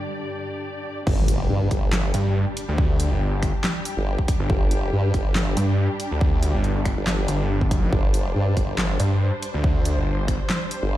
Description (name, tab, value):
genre	heavy wobble dubstep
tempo	140 BPM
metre	4/4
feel	swing 54% on 16ths, half-time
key	unclear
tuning	A4 = 441 Hz
part	muted studio string section	sustained chords	0.0-11.0 s	G2 to D5	-30 LUFS	equal	sidechain pumping
part	formant-sweep wobble bass	bass	1.1-11.0 s	G1 to G2	-22 LUFS	equal	chorus, overdrive
part	big-room dance drum kit	drums	1.1-10.8 s	crash cymbal, finger snaps, handclaps, hi-hat, snare drum	-27 LUFS	equal	overdrive
part	electronic kick drum	drums	1.1-10.4 s	none	-22 LUFS	equal	overdrive
part	impact	sound effects	1.1-2.8 s	none	-29 LUFS	equal	none
part	snarling distorted saw bass	bass	2.1-10.4 s	G1 to G2	-21 LUFS	equal	distortion, overdrive
room	digital ambience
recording	played on a big sound system in a bare room, large studio reverb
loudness	-20 LUFS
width	side -14 dB against mid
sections	0.0-1.1 A section; 1.1-11.0 B section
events	break 0.0-1.1; build-up 0.0-1.1; drop 1.1-11.0; impact 1.1-2.8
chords	0.0 G5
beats	0.21 0.64 | 1.07 1.50 1.93 2.35 | 2.78 3.21 3.64 4.07 | 4.50 4.93 5.35 5.78 | 6.21 6.64 7.07 7.50 | 7.93 8.35 8.78 9.21 | 9.64 10.07 10.50 10.93